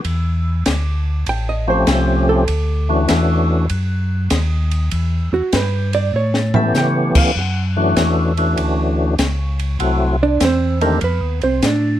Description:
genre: soul jazz organ trio.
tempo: 98 BPM.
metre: 4/4.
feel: swing 67% on 8ths.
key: D major.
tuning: A4 = 441 Hz.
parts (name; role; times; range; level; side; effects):
tonewheel organ; bass; 0.0-12.0 s; A1 to C#3; -18 LUFS; equal; slow rotary speaker.
compact cocktail drum kit; drums; 0.0-11.8 s; crash cymbal, hi-hat, kick drum, ride cymbal, snare drum, toms; -21 LUFS; equal; none.
hollow-body jazz guitar; accompaniment; 1.3-12.0 s; Bb3 to G5; -20 LUFS; right 4 dB; none.
percussive tonewheel organ; melody; 1.7-11.0 s; Eb3 to G4; -17 LUFS; left 2 dB; slow rotary speaker, overdrive, chorus vibrato.
room: light reverb.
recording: close, detailed microphones.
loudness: -15 LUFS.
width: side -12 dB against mid.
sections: 0.0-7.4 A section; 7.4-12.0 A section.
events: hollow-body jazz guitar solo 0.0-12.0; drum fill 6.1-6.7.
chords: 0.0 Dsus2; 1.3 A7alt; 2.5 Dmaj9; 3.7 Ebm; 4.9 Em; 6.1 A7; 7.4 Dmaj9; 9.8 F#m7b5; 11.0 F6.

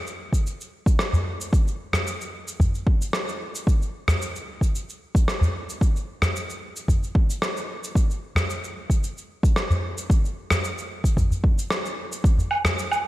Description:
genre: downtempo.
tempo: 112 BPM.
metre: 4/4.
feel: straight.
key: none.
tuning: none.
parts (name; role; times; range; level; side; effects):
electronic cabasa, rim click and woodblock; drums; 0.1-13.0 s; none; -27 LUFS; equal; none.
electronic kick drum; drums; 0.3-12.4 s; none; -20 LUFS; equal; overdrive.
udu; percussion; 1.1-12.7 s; none; -24 LUFS; equal; none.
room: light reverb.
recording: none.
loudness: -22 LUFS.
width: side -16 dB against mid.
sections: 0.0-12.2 A section.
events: none.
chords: none.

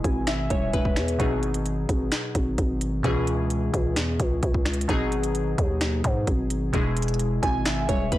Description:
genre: hip hop, trap.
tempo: 130 BPM.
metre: 4/4.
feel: half-time.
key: G# minor.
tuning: A4 = 440 Hz.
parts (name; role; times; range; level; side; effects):
glassy digital keys; accompaniment; 0.0-8.2 s; B2 to G#5; -27 LUFS; left 1 dB; chorus, low-pass filter.
growling 808-style bass; bass; 0.0-8.2 s; D#1 to G#2; -26 LUFS; equal; none.
trap drum kit; drums; 0.0-8.2 s; finger snaps, hi-hat, kick drum, snare drum; -26 LUFS; equal; none.
room: digital ambience.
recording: blown-out, overdriven recording, overdrive.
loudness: -22 LUFS.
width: side -15 dB against mid.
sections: 0.0-8.2 A section.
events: filter sweep on synth keys 0.0-1.2.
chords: 0.0 E; 1.2 G#m7; 3.0 C#m7; 4.9 G#m7; 6.7 E.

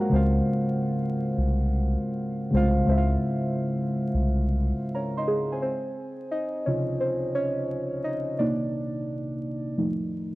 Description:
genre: lo-fi hip hop.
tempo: 87 BPM.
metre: 4/4.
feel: swing 65% on 16ths.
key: Db major.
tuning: A4 = 442 Hz.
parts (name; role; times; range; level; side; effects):
muted felt-like synth keys; accompaniment; 0.0-10.3 s; C3 to C6; -25 LUFS; equal; chorus.
soft dub sub bass; bass; 0.1-4.7 s; C2 to Db2; -24 LUFS; equal; transformer saturation.
room: light reverb.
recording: dry, gritty hardware recording, vinyl crackle.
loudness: -24 LUFS.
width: side -19 dB against mid.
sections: 0.0-5.6 A section; 5.6-10.3 B section.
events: synth keys solo 5.6-10.3.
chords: 0.1 Dbmaj7; 8.4 Cm9; 9.8 F7.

